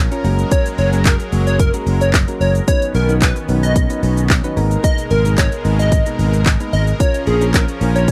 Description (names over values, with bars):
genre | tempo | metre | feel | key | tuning
dance-pop | 111 BPM | 4/4 | straight | F# major | A4 = 441 Hz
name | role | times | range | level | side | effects
lush unison pad | sustained chords | 0.0-8.1 s | B2 to A#4 | -28 LUFS | equal | chorus, sidechain pumping
sustaining fretless electric bass | bass | 0.0-8.1 s | F#1 to B1 | -18 LUFS | equal | sidechain pumping
soft electric-piano-like synth keys | accompaniment | 0.1-8.0 s | F#3 to C#5 | -27 LUFS | equal | chorus
pop drum kit | drums | 0.1-8.1 s | handclaps, hi-hat, kick drum, shaker | -18 LUFS | equal | none
plucky unison lead | melody | 0.5-8.1 s | G#4 to D#5 | -24 LUFS | equal | tape echo
room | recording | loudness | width
little or no reverb | dry, close 1970s-style studio recording | -16 LUFS | mono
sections
0.0-8.1 A section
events
none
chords
0.2 F#add9; 2.7 Badd9; 4.6 G#madd9; 7.0 A#m